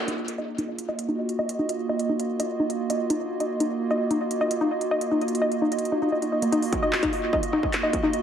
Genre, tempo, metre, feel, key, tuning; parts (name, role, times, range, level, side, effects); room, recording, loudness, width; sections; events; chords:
IDM; 149 BPM; 4/4; straight; Eb minor; A4 = 440 Hz
hollow soft pad; sustained chords; 0.0-8.2 s; Bb3 to Eb5; -27 LUFS; right 2 dB; chorus, sidechain pumping
warbly dusty pluck; arpeggios; 0.0-8.1 s; Bb3 to Eb5; -26 LUFS; left 1 dB; chorus, tape echo
industrial drum kit; drums; 0.1-8.2 s; handclaps, hi-hat, rim click, struck metal; -31 LUFS; equal; tape echo
electronic kick drum; drums; 6.7-8.0 s; -30 LUFS; equal; distortion
wet plate reverb, RT60 1.1 s; echo-heavy mix; -23 LUFS; side -8 dB against mid
0.1-6.5 A section; 6.5-8.2 B section
filter sweep on analog synth pad 0.1-6.5; filter sweep on synth arpeggio sound 0.1-6.5
0.1 Ebmadd9